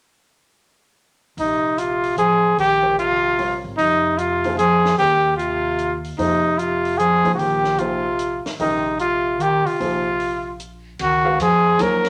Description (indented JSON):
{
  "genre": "modal jazz",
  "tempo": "150 BPM",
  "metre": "3/4",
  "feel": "swing 64% on 8ths",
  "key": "Bb dorian",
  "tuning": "A4 = 440 Hz",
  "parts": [
    { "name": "warm trumpet", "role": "melody", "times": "1.4-12.1 s", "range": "Eb4 to A#4", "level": "-20 LUFS", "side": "equal", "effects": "none" },
    { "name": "warm bass clarinet", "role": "second line", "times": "1.4-12.1 s", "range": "C3 to F#3", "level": "-27 LUFS", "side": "equal", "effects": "none" },
    { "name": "upright bass", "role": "bass", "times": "1.4-12.1 s", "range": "Ab1 to F2", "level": "-35 LUFS", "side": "equal", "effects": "none" },
    { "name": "compact cocktail drum kit", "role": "drums", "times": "1.4-12.1 s", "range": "hi-hat, ride cymbal, snare drum", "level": "-38 LUFS", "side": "equal", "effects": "none" },
    { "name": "dark baby grand piano", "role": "accompaniment", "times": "2.8-12.0 s", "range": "C3 to E#5", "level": "-30 LUFS", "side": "equal", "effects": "none" }
  ],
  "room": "wet studio reverb, RT60 0.8 s",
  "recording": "none",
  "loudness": "-19 LUFS",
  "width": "mono",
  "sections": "1.4-11.0 A section; 11.0-12.1 B section",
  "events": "break 10.6-11.0",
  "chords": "1.4 Bb9sus4; 11.0 G#13sus4"
}